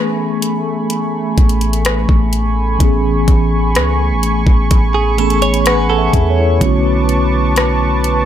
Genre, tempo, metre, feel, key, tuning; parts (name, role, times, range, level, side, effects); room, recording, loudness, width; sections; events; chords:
contemporary R&B; 63 BPM; 4/4; straight; A major; A4 = 440 Hz
mellow tine electric piano; accompaniment; 0.0-8.3 s; D3 to G#5; -18 LUFS; equal; medium stereo tremolo
warm analog pad; sustained chords; 0.0-8.3 s; A3 to D6; -19 LUFS; right 1 dB; chorus
smooth R&B drum kit; drums; 0.4-8.3 s; hi-hat, kick drum, rim click; -15 LUFS; equal
long sustained 808-style bass; bass; 1.4-8.2 s; A1 to E2; -16 LUFS; equal
direct-recorded clean electric guitar; arpeggios; 4.9-6.6 s; G#4 to C#5; -20 LUFS; right 6 dB; harmonic tremolo, ping-pong delay
little or no reverb; -12 LUFS; side -10 dB against mid
0.0-8.3 A section
break 0.0-0.9; tine electric piano fill 4.7-6.6
0.0 Amaj9; 6.6 Bm9